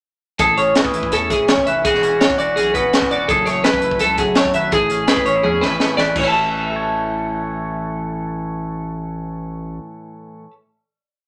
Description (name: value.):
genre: math rock and midwest emo.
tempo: 167 BPM.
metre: 4/4.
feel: straight.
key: A major.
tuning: A4 = 440 Hz.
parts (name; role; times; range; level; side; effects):
twangy electric guitar; accompaniment; 0.4-10.6 s; F#2 to C#5; -25 LUFS; equal; vibrato effect.
twelve-string electric guitar; arpeggios; 0.4-10.5 s; G#4 to A5; -20 LUFS; equal; none.
round analog bass; bass; 0.4-9.8 s; E1 to E2; -32 LUFS; equal; none.
crisp fusion drum kit; drums; 0.4-6.2 s; crash cymbal, hi-hat, kick drum, snare drum, toms; -22 LUFS; equal; none.
room: wet studio reverb, RT60 0.6 s.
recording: none.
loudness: -18 LUFS.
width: mono.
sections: 0.4-6.2 A section; 6.2-9.0 final chord.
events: drum fill 5.4-6.2.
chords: 0.4 Amaj7; 1.8 E13; 3.3 F#m9; 4.7 Amaj9; 6.2 A.